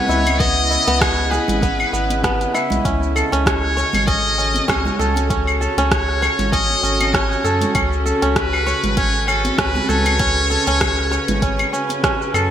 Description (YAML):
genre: organic downtempo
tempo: 98 BPM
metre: 4/4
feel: swing 55% on 16ths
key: unclear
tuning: A4 = 439 Hz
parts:
  - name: trumpet with metal mute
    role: melody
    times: 0.0-12.0 s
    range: A4 to D#5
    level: -21 LUFS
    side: left 1 dB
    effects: vintage 12-bit sampler grit, digital delay
  - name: rich chamber string section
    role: sustained chords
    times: 0.0-12.5 s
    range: C#3 to D#5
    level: -26 LUFS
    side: equal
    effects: sidechain pumping
  - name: kora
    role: arpeggios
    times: 0.0-12.5 s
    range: B3 to C#5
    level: -22 LUFS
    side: right 1 dB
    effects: digital delay
  - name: round analog bass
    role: bass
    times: 0.1-12.5 s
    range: G#1 to F#2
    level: -22 LUFS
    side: equal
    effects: tube saturation
  - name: deep house drum kit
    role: drums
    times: 0.1-12.5 s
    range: claves, hi-hat, rim click, shaker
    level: -22 LUFS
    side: equal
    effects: gated reverb
  - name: congas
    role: percussion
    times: 0.1-12.5 s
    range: none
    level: -27 LUFS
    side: right 2 dB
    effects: none
  - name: electronic kick drum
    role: drums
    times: 0.4-12.2 s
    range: none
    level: -23 LUFS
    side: equal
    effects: none
room: moderate lush hall reverb, RT60 2.6 s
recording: bright 1980s-style digital production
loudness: -15 LUFS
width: side -10 dB against mid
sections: 0.0-12.5 A section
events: none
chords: 0.0 C#m7; 2.8 F#m